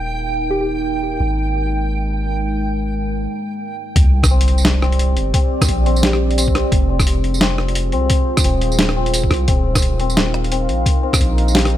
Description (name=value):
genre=half-time drum and bass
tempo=174 BPM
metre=4/4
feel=swing 59% on 16ths, half-time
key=C minor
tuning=A4 = 441 Hz
part: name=deep dark ambient pad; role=sustained chords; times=0.0-11.8 s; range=Ab3 to F5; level=-24 LUFS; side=right 2 dB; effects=chorus, built-in reverb, sidechain pumping
part: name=long sustained 808-style bass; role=bass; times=0.0-11.8 s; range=Eb1 to C2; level=-18 LUFS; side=equal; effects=none
part: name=backwards swelling texture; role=texture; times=0.0-3.3 s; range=G5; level=-27 LUFS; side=right 4 dB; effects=built-in reverb
part: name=soft struck synth lead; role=melody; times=0.5-0.7, 6.0-6.2, 11.6-11.7 s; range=G4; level=-25 LUFS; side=left 2 dB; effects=chorus, ping-pong delay
part: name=boom bap sampler-style drum kit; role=drums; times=4.0-11.7 s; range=hi-hat, rim click, snare drum, tambourine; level=-19 LUFS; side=equal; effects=none
part: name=electronic kick drum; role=drums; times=4.0-11.2 s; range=none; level=-16 LUFS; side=equal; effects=none
part: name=sub drop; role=sound effects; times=4.0-5.3 s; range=none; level=-22 LUFS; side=equal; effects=none
part: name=santur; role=arpeggios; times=4.3-11.8 s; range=C4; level=-24 LUFS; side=left 5 dB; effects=vintage 12-bit sampler grit, ping-pong delay
room=light reverb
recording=none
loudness=-15 LUFS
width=side -12 dB against mid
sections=0.0-4.0 A section; 4.0-11.8 B section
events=filter sweep on ambient pad 0.0-4.0; break 3.3-4.0; drop 4.0-11.8; impact 4.0-5.3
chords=0.0 Eb; 1.2 Ab5; 4.0 C5; 6.7 Fm; 9.5 Eb5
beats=0.17 0.51 0.86 | 1.20 1.55 1.89 2.24 | 2.58 2.93 3.27 3.62 | 3.96 4.31 4.65 5.00 | 5.34 5.69 6.03 6.38 | 6.72 7.07 7.41 7.75 | 8.10 8.44 8.79 9.13 | 9.48 9.82 10.17 10.51 | 10.86 11.20 11.55